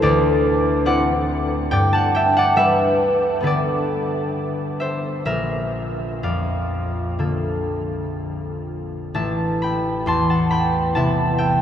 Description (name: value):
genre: classical, solo harp piece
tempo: 60-72 BPM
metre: 4/4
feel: rubato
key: unclear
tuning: A4 = 440 Hz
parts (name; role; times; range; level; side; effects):
- concert harp; solo; 0.0-11.6 s; A1 to C6; -18 LUFS; equal; none
room: wet huge ambient reverb, RT60 8.1 s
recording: in a vast, echoing space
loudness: -18 LUFS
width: side -9 dB against mid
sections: 0.0-11.6 A section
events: none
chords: 0.0 D9; 1.7 Gadd9; 5.3 Bbmaj7; 9.2 Amadd9